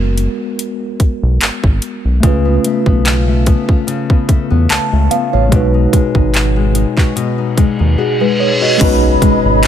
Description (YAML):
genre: contemporary R&B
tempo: 73 BPM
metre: 4/4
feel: swing 54% on 16ths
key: B major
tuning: A4 = 440 Hz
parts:
  - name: mellow tine electric piano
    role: accompaniment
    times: 0.0-9.7 s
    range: G#3 to A5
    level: -17 LUFS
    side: right 2 dB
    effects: medium stereo tremolo
  - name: round analog bass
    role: bass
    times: 0.0-9.7 s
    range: F#1 to E2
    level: -14 LUFS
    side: equal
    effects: none
  - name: downlifter, reverse cymbal and impact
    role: sound effects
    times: 0.0-2.2, 7.8-9.7 s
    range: none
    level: -21 LUFS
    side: equal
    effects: none
  - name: trap drum kit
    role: drums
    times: 0.2-9.7 s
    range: crash cymbal, handclaps, hi-hat, kick drum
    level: -14 LUFS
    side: equal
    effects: none
  - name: nylon-string guitar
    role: arpeggios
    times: 2.2-9.7 s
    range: B2 to F#4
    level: -18 LUFS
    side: left 8 dB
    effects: tape echo
  - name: mellow hollow large flute ensemble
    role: sustained chords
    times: 8.8-9.7 s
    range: G#4 to B5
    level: -16 LUFS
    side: equal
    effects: sidechain pumping
room: little or no reverb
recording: none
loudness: -11 LUFS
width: side -10 dB against mid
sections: 0.0-8.8 A section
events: reverse cymbal 7.8-8.8; impact 8.8-9.7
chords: 0.0 G#m9; 2.2 C#7alt; 5.5 B6; 8.8 B69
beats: 0.59 1.41 | 2.23 3.05 3.88 4.70 | 5.52 6.34 7.16 7.99 | 8.81 9.63